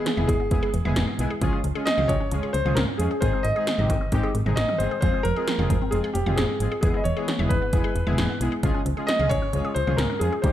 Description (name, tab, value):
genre	synth-pop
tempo	133 BPM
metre	4/4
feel	straight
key	unclear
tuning	A4 = 442 Hz
part	warm grand piano	melody	0.0-10.5 s	G4 to Eb5	-27 LUFS	equal	ping-pong delay
part	analog synth brass	accompaniment	0.0-10.5 s	G3 to G#4	-30 LUFS	left 1 dB	chorus
part	resonant blip pluck	arpeggios	0.0-10.5 s	Eb3 to F5	-33 LUFS	right 1 dB	phaser, ping-pong delay
part	downlifter	sound effects	0.0-1.4 s	none	barely audible	none	none
part	80s electronic pad drums	drums	0.1-10.5 s	hi-hat, kick drum, snare drum, toms	-26 LUFS	equal	gated reverb on snare and toms
part	solid FM bass	bass	0.2-10.5 s	E1 to F2	-26 LUFS	equal	none
room	light reverb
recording	none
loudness	-21 LUFS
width	side -12 dB against mid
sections	0.0-10.5 A section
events	none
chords	0.0 E; 1.4 Db; 3.2 Ab; 5.0 Fm; 6.8 E; 8.6 Db